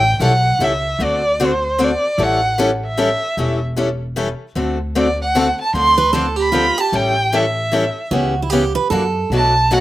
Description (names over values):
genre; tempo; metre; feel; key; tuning
acoustic string swing (jazz manouche); 152 BPM; 3/4; swing 62% on 8ths; A mixolydian; A4 = 440 Hz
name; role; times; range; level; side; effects
warm violin; melody; 0.0-9.8 s; C5 to C6; -17 LUFS; right 1 dB; none
picked steel-string acoustic guitar; accompaniment; 0.0-9.8 s; B2 to A4; -19 LUFS; left 2 dB; slapback echo
upright bass; bass; 0.0-9.8 s; E1 to F#2; -22 LUFS; equal; none
picked steel-string acoustic guitar; second line; 6.0-9.4 s; E4 to B4; -20 LUFS; right 5 dB; slapback echo
room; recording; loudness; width
little or no reverb; recorded outdoors, with no room sound; -15 LUFS; side -15 dB against mid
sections
0.0-9.8 A section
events
none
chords
0.0 A7; 1.0 D7; 2.2 A7; 4.6 D7; 5.7 Dm7; 6.9 A7; 8.1 C#m7b5; 8.9 F#7alt; 9.3 Bm7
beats
0.20 0.60 | 0.99 1.39 1.78 | 2.18 2.58 2.97 | 3.37 3.77 4.16 | 4.56 4.95 5.35 | 5.74 6.14 6.54 | 6.93 7.33 7.72 | 8.12 8.51 8.91 | 9.30 9.70